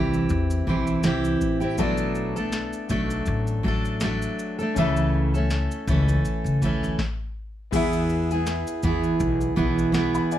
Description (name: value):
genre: acoustic pop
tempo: 81 BPM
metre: 4/4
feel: swing 55% on 16ths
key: unclear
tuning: A4 = 440 Hz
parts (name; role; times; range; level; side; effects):
- clear upright piano; accompaniment; 0.0-10.4 s; B3 to B5; -33 LUFS; left 7 dB; none
- fingerpicked steel-string acoustic guitar; accompaniment; 0.0-10.4 s; B2 to A4; -24 LUFS; right 2 dB; none
- upright bass; bass; 0.0-10.2 s; A1 to C#3; -26 LUFS; left 1 dB; none
- booming analog drum machine; drums; 0.1-10.4 s; crash cymbal, kick drum, shaker, snare drum; -32 LUFS; left 1 dB; none
room: light reverb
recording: none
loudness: -21 LUFS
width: side -12 dB against mid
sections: 0.0-7.7 A section; 7.7-10.4 A section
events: stop 7.0-7.7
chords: 0.0 C; 1.8 Bm7; 4.8 A/C#; 7.7 E